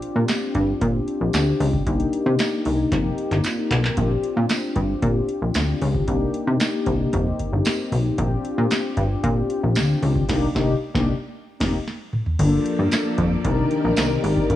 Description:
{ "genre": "early-eighties boogie funk", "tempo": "114 BPM", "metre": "4/4", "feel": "straight", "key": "C dorian", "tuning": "A4 = 441 Hz", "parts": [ { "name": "mellow synth brass", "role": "accompaniment", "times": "0.0-14.6 s", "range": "Bb3 to Bb4", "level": "-24 LUFS", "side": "left 2 dB", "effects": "chorus" }, { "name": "booming analog drum machine", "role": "drums", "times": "0.0-14.6 s", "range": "crash cymbal, handclaps, hi-hat, kick drum, snare drum, toms", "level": "-25 LUFS", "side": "equal", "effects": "none" }, { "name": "plucky analog bass", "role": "bass", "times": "0.2-14.6 s", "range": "F1 to C3", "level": "-21 LUFS", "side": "equal", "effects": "none" }, { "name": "tambourine", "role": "percussion", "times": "0.3-14.1 s", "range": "none", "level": "-37 LUFS", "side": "right 8 dB", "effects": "none" }, { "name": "phased string machine", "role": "sustained chords", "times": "12.4-14.6 s", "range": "Eb3 to D5", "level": "-28 LUFS", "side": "equal", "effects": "ensemble chorus, phaser" } ], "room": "little or no reverb", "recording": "small room ambience", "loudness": "-19 LUFS", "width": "side -13 dB against mid", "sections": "0.0-12.4 A section; 12.4-14.6 B section", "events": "drum fill 2.9-4.0, 11.9-12.4; band accent 10.3-12.4", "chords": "0.0 Bb6; 1.9 Cm9; 2.9 F9sus4; 4.0 Bb6; 6.1 Cm9; 7.1 F9sus4; 8.2 Bb6; 10.3 Cm9; 11.3 F9sus4; 12.4 Gm9; 13.4 Cm9", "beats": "0.29 0.81 1.34 | 1.87 2.39 2.92 3.44 | 3.97 4.50 5.02 5.55 | 6.08 6.60 7.13 7.66 | 8.18 8.71 9.23 9.76 | 10.29 10.81 11.34 11.87 | 12.39 12.92 13.45 13.97 | 14.50" }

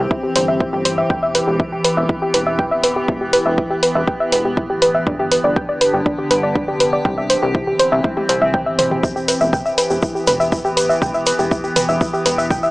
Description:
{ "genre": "melodic techno", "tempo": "121 BPM", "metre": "4/4", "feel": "straight", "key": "E minor", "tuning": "A4 = 441 Hz", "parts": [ { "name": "evolving wavetable pad", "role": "sustained chords", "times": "0.0-12.7 s", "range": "D3 to G4", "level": "-22 LUFS", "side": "equal", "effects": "chorus, built-in reverb, phaser, sidechain pumping" }, { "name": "soft round pluck", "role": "arpeggios", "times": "0.0-12.7 s", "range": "D4 to G5", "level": "-17 LUFS", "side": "equal", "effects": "chorus, sidechain pumping, analog delay" }, { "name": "plucky analog bass", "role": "bass", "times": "0.0-12.7 s", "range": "D1 to C2", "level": "-26 LUFS", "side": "equal", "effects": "sidechain pumping" }, { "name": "electronic kick drum", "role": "drums", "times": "0.1-12.6 s", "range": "none", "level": "-20 LUFS", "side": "equal", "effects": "none" }, { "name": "house drum kit", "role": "drums", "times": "0.4-12.6 s", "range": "hi-hat, toms", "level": "-21 LUFS", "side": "equal", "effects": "none" }, { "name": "tube shaker", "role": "percussion", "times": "9.0-12.7 s", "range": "none", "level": "-29 LUFS", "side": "left 1 dB", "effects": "none" } ], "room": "light reverb", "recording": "dry, gritty hardware recording, small speaker sound", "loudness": "-15 LUFS", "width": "side -21 dB against mid", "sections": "0.0-12.7 A section", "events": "drum fill 8.0-9.0", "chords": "0.0 C; 1.1 Em; 5.1 G; 7.1 C; 9.0 Em", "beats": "0.11 0.60 | 1.10 1.60 2.09 2.59 | 3.08 3.58 4.08 4.57 | 5.07 5.56 6.06 6.55 | 7.05 7.55 8.04 8.54 | 9.04 9.53 10.03 10.52 | 11.02 11.51 12.01 12.51" }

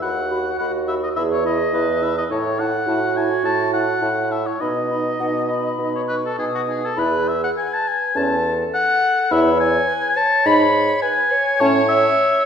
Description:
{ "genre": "quick classical-period movement for wind quintet", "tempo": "104 BPM", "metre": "4/4", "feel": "rubato", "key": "E major", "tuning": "A4 = 440 Hz", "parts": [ { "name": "hollow concert flute", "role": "melody", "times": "0.0-11.9 s", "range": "F#5 to D#6", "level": "-28 LUFS", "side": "left 4 dB", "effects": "none" }, { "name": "warm oboe", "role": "second line", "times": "0.0-12.4 s", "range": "F#4 to B5", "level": "-20 LUFS", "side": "left 2 dB", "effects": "none" }, { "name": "clear French horn", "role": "accompaniment", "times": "0.0-11.8 s", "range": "C#4 to F#4", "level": "-26 LUFS", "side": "equal", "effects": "none" }, { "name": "mellow clarinet", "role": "accompaniment", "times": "0.0-12.5 s", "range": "D#4 to C#5", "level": "-24 LUFS", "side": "right 3 dB", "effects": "none" }, { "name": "mellow bassoon", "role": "bass", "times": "0.0-12.1 s", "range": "D#2 to B2", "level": "-23 LUFS", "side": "right 2 dB", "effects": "none" } ], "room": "wet recital hall reverb, RT60 1.3 s", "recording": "heard from further back in the room", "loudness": "-17 LUFS", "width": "side -7 dB against mid", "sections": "0.0-12.5 A section", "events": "none", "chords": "0.0 B/D# (rootless); 1.2 E; 2.3 A5; 4.6 B; 7.0 E; 8.2 A/E; 9.3 E; 10.5 G#m; 11.6 A", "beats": "| 0.03 0.60 1.17 1.74 | 2.31 2.88 3.44 4.02 | 4.61 5.20 5.79 6.38 | 6.98 7.57 8.15 8.73 | 9.31 9.89 10.46 11.03 | 11.61 12.18" }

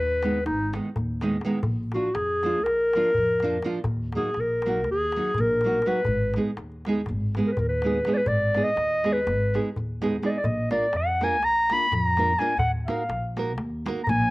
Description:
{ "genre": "balkan folk, Balkan wedding band", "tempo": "246 BPM (eighths)", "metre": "9/8", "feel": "straight", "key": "Ab dorian sharp4", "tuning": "A4 = 440 Hz", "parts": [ { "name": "dark clarinet", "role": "melody", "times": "0.0-14.3 s", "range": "Eb4 to Cb6", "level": "-23 LUFS", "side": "left 1 dB", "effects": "none" }, { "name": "upright bass", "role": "bass", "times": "0.0-14.3 s", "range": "Ab1 to F2", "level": "-30 LUFS", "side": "equal", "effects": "none" }, { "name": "darbuka", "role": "percussion", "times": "0.1-14.2 s", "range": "none", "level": "-32 LUFS", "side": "left 1 dB", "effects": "none" }, { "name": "nylon-string guitar", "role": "accompaniment", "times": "0.2-14.0 s", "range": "Eb3 to Bb4", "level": "-28 LUFS", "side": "right 2 dB", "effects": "cassette tape" } ], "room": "light reverb, studio reverb", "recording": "home recording on cassette", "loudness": "-22 LUFS", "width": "side -20 dB against mid", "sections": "0.0-14.3 A section", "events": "clarinet solo 0.0-14.3", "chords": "0.0 Abm; 1.7 Bb; 3.9 Ebm; 6.1 Abm; 10.4 Bb; 12.6 Ebm", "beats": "0.19 0.43 0.68 0.92 1.17 1.41 | 1.66 1.90 2.15 2.39 2.64 2.88 3.13 3.37 3.62 | 3.86 4.11 4.35 4.60 4.84 5.09 5.33 5.58 5.82 | 6.06 6.31 6.55 6.80 7.04 7.28 7.53 7.77 8.01 | 8.26 8.50 8.74 8.99 9.23 9.47 9.71 9.96 10.20 | 10.44 10.68 10.92 11.16 11.40 11.64 11.88 12.12 12.37 | 12.61 12.84 13.08 13.32 13.56 13.80 14.04 14.28" }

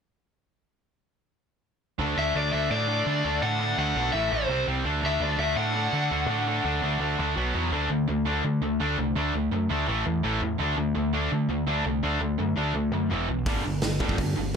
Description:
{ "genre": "punk rock", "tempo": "167 BPM", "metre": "4/4", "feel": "straight", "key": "unclear", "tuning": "A4 = 439 Hz", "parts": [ { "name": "distorted electric guitar", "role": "riff", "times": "2.0-14.5 s", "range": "E2 to D4", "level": "-29 LUFS", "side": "left 10 dB", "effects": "distortion" }, { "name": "distorted electric guitar", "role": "riff", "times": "2.0-14.5 s", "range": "E2 to D4", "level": "-29 LUFS", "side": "right 17 dB", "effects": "overdrive" }, { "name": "growling picked electric bass", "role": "bass", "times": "2.0-14.5 s", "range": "E1 to D3", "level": "-29 LUFS", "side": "equal", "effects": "overdrive" }, { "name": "raw garage guitar", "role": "melody", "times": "2.2-7.3 s", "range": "C5 to F#5", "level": "-28 LUFS", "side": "left 2 dB", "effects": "overdrive" }, { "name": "raw garage drum kit", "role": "drums", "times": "13.5-14.6 s", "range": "hi-hat, kick drum, snare drum", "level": "-27 LUFS", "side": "right 1 dB", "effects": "none" } ], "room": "light reverb", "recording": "none", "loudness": "-24 LUFS", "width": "side -6 dB against mid", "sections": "2.0-7.7 A section; 7.7-14.6 B section", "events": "none", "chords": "2.0 D; 4.1 A5; 4.5 C5; 4.9 D; 7.4 B5; 7.7 D5; 9.9 A5; 10.6 D; 13.1 E5; 13.5 G5", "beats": "| 1.98 2.34 2.70 3.06 | 3.42 3.78 4.14 4.50 | 4.85 5.21 5.57 5.93 | 6.29 6.65 7.01 7.37 | 7.72 8.08 8.44 8.80 | 9.16 9.52 9.88 10.23 | 10.59 10.95 11.31 11.67 | 12.03 12.39 12.74 13.10 | 13.46 13.82 14.18 14.54" }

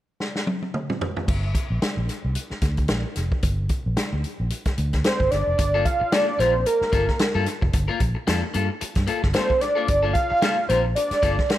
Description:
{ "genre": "funk", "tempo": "112 BPM", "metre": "4/4", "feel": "swing 56% on 16ths", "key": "G minor", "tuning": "A4 = 436 Hz", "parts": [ { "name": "vintage drum kit", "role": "drums", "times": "0.2-11.6 s", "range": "crash cymbal, hi-hat, kick drum, snare drum, toms", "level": "-25 LUFS", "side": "equal", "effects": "none" }, { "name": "vintage muted fingered electric bass", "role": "bass", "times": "1.3-11.4 s", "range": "F1 to G2", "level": "-25 LUFS", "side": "equal", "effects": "none" }, { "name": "fat analog lead", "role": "melody", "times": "5.1-11.6 s", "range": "Bb4 to F5", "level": "-21 LUFS", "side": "right 1 dB", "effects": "none" }, { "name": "electric guitar at the edge of break-up", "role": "accompaniment", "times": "5.6-11.5 s", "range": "Bb3 to Bb4", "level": "-28 LUFS", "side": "left 6 dB", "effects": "none" } ], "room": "light reverb, studio reverb", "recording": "none", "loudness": "-20 LUFS", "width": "side -13 dB against mid", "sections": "0.0-1.3 A section; 1.3-5.6 B section; 5.6-11.6 C section", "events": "drum fill 0.2-1.3", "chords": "0.0 N.C.; 1.3 Gm7; 5.6 Gm9", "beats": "0.20 0.74 | 1.28 1.82 2.36 2.90 | 3.44 3.98 4.51 5.05 | 5.59 6.13 6.67 7.20 | 7.74 8.28 8.81 9.35 | 9.89 10.42 10.96 11.50" }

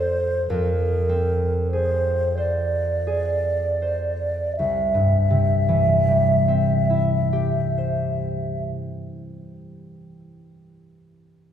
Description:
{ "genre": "classical, impressionist duo for flute and harp", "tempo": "26-37 BPM (dotted quarters)", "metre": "6/8", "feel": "rubato", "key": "C mixolydian", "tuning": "A4 = 441 Hz", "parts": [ { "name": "mellow hollow concert flute", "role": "melody", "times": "0.0-8.6 s", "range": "Bb4 to E5", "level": "-22 LUFS", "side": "equal", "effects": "none" }, { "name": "concert harp", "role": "accompaniment", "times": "0.0-10.5 s", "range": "C2 to C5", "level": "-22 LUFS", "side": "equal", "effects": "none" } ], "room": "wet recital hall reverb, RT60 1.4 s", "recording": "recorded in a church or concert hall", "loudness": "-19 LUFS", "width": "side -9 dB against mid", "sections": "0.0-4.6 A section; 4.6-9.0 B section", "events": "slowing down 0.0-4.6", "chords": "0.5 Fm6; 4.6 C", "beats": "| 0.49 2.37 | 4.57 6.78" }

